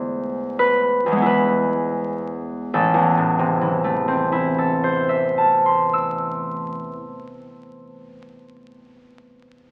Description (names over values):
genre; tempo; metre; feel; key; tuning
classical, solo harp piece; 38-50 BPM; 3/4; rubato; A minor; A4 = 441 Hz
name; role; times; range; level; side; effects
concert harp; solo; 0.0-8.1 s; A1 to E6; -21 LUFS; equal; none
room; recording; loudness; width
wet recital hall reverb, RT60 1.7 s; very old 78 rpm record, vinyl crackle; -20 LUFS; mono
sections
0.0-2.7 A section; 2.7-6.6 B section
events
slowing down 0.0-2.7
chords
0.0 E7; 2.7 Am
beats
1.26 | 2.74 4.08 5.36